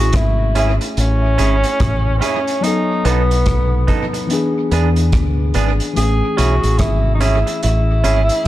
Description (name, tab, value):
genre	lovers rock reggae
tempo	72 BPM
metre	4/4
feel	swing 61% on 16ths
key	A major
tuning	A4 = 438 Hz
part	breathy tenor saxophone	melody	0.0-8.5 s	B3 to G#4	-20 LUFS	equal	tape echo
part	tine electric piano	accompaniment	0.0-8.5 s	E3 to A4	-22 LUFS	left 3 dB	tape echo
part	deep dub fingered electric bass	bass	0.0-8.3 s	G#1 to E2	-16 LUFS	equal	none
part	vintage drum kit	drums	0.1-8.5 s	hi-hat, kick drum, rim click	-22 LUFS	equal	tape echo
part	electric guitar through a small old amp	stabs	0.6-8.2 s	B3 to A4	-24 LUFS	right 6 dB	none
room	light reverb, studio ambience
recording	dark, warm production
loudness	-14 LUFS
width	side -14 dB against mid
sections	0.0-8.5 A section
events	none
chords	0.0 Amaj7; 2.6 B7; 4.3 E7; 6.0 Amaj7